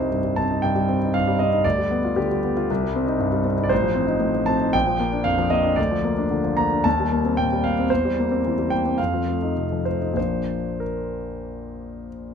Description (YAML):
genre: classical, romantic character piece for solo piano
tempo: 92-121 BPM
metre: 4/4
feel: rubato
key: Bb major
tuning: A4 = 440 Hz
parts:
  - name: warm concert grand piano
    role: solo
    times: 0.0-12.3 s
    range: A1 to Bb5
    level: -20 LUFS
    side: equal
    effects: none
room: moderate large studio reverb, RT60 1.4 s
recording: close, detailed microphones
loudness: -20 LUFS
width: side -7 dB against mid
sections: 0.0-12.3 A section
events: none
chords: 0.0 Cm; 1.6 G7/D; 2.7 Cm; 3.7 F7/A; 4.7 Bb; 5.8 Bb/D; 6.9 Cm7/Eb; 7.9 C7/E; 9.0 F7; 10.2 Bb